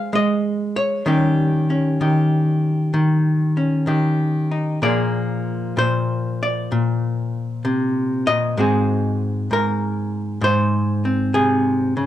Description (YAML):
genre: solo jazz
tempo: 64 BPM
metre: 4/4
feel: swing 67% on 8ths, rubato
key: Eb mixolydian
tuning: A4 = 439 Hz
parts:
  - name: archtop guitar, miked and amplified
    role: solo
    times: 0.0-12.1 s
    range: Ab2 to F5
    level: -17 LUFS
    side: left 1 dB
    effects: none
room: moderate large studio reverb, RT60 0.9 s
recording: dark, warm production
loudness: -17 LUFS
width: side -12 dB against mid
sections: 0.0-12.1 A section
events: none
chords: 0.0 Ab7; 1.1 Eb7; 4.8 Bb7; 8.6 Ab7